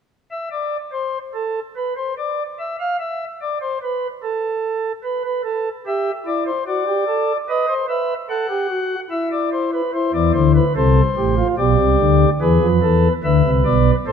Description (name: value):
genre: classical, baroque-style 3-part fugue for pipe organ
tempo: 73 BPM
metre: 3/4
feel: straight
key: unclear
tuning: A4 = 445 Hz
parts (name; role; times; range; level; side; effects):
- pipe organ, flutes; solo; 0.3-14.1 s; A1 to F#5; -17 LUFS; equal; none
room: moderate scoring stage reverb, RT60 1.6 s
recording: none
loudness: -17 LUFS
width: side -7 dB against mid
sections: 0.1-14.1 A section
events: none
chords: 0.1 N.C.; 5.0 Em; 6.7 Dadd11/F#; 7.5 B; 9.1 E5; 9.9 Am; 11.6 Gadd11/B; 12.4 E